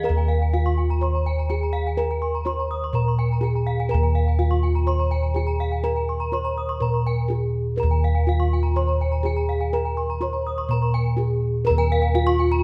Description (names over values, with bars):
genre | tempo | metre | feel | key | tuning
Balinese gamelan | 124 BPM | 4/4 | straight | unclear | A4 = 440 Hz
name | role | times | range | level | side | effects
gamelan-type bronze metallophone | melody | 0.0-12.6 s | F4+30c to Db5-45c | -29 LUFS | equal | none
gamelan-type bronze metallophone | arpeggios | 0.0-12.5 s | F5+30c to Eb6 | -33 LUFS | equal | none
gamelan-type bossed gongs | bass | 0.0-12.6 s | Eb2 to Bb4+25c | -24 LUFS | equal | none
gamelan-type bronze metallophone | arpeggios | 0.2-12.6 s | Ab5-35c to Db6-45c | -35 LUFS | equal | none
room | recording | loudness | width
moderate recital hall reverb, RT60 1.5 s | none | -22 LUFS | mono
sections
0.0-12.6 A section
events
none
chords
none